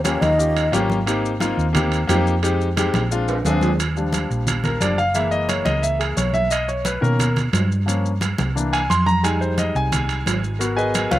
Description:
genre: Afro-Cuban jazz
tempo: 176 BPM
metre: 4/4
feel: straight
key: Eb major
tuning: A4 = 441 Hz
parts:
  - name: mellow alto flute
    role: melody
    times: 0.0-0.7 s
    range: Db5 to Eb5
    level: -22 LUFS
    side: equal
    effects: none
  - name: growling trombone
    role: second line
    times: 0.0-0.7 s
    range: Db4 to Eb4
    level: -26 LUFS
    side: left 4 dB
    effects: slapback echo
  - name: clear concert grand piano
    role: accompaniment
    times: 0.0-11.2 s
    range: D#3 to C6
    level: -22 LUFS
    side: left 1 dB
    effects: none
  - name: hollow-body short-scale fingered electric bass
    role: bass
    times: 0.0-11.2 s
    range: Gb1 to B2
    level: -22 LUFS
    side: right 1 dB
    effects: none
  - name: congas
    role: percussion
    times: 0.0-11.2 s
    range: none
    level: -26 LUFS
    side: left 1 dB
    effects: none
  - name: maracas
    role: percussion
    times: 0.0-11.2 s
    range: none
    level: -32 LUFS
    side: left 7 dB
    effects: none
  - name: timbales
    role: percussion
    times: 0.1-11.2 s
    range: none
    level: -27 LUFS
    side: right 7 dB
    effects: slapback echo
room: little or no reverb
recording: recorded outdoors, with no room sound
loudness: -18 LUFS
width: side -14 dB against mid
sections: 0.0-3.8 A section; 3.8-11.2 B section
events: drum fill 3.3-3.8; grand piano solo 3.8-11.2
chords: 0.0 Eb9; 1.1 Abmaj7; 2.4 Fm7; 3.1 Bb7; 3.8 Ebmaj7; 5.2 Gb7; 6.5 Bmaj9; 7.9 Gm7b5; 8.6 C7; 9.2 Fm7; 10.6 Abm7

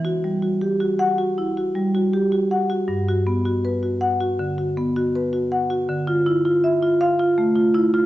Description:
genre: classical, contemporary piece for solo marimba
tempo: 80 BPM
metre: 4/4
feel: rubato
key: E minor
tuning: A4 = 439 Hz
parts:
  - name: marimba with medium hard mallets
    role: solo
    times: 0.0-8.1 s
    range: G2 to F#5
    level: -18 LUFS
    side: equal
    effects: none
room: moderate recital hall reverb, RT60 1.4 s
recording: dark, warm production, nothing above 7.9 kHz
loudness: -18 LUFS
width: side -15 dB against mid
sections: 0.0-8.1 A section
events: none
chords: 0.0 Emadd9; 2.9 Gmaj7; 5.9 Dmadd9

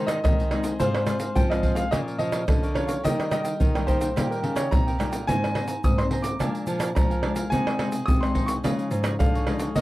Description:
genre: samba and choro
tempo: 107 BPM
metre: 4/4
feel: straight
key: Ab major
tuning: A4 = 440 Hz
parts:
  - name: warm baby grand piano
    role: melody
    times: 0.0-9.8 s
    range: Bb4 to Eb6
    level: -29 LUFS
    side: right 1 dB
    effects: none
  - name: cavaquinho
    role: accompaniment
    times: 0.0-9.8 s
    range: D4 to Bb5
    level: -35 LUFS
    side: right 3 dB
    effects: none
  - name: nylon-string guitar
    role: accompaniment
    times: 0.0-9.8 s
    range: F2 to F4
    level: -31 LUFS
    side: left 3 dB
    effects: none
  - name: nylon-string guitar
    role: bass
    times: 0.0-9.8 s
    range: Ab2 to F3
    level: -29 LUFS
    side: equal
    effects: none
  - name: egg shaker, pandeiro, tamborim and surdo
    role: percussion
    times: 0.1-9.8 s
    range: none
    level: -24 LUFS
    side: equal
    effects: none
room: light reverb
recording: dry, close 1970s-style studio recording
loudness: -22 LUFS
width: side -17 dB against mid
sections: 0.0-9.8 A section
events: none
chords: 0.0 Ab; 0.8 Fm/Ab; 1.9 Bbm; 3.0 Eb; 5.3 Abadd9; 6.4 Bb7; 7.5 Ab/C; 8.6 Dbadd9

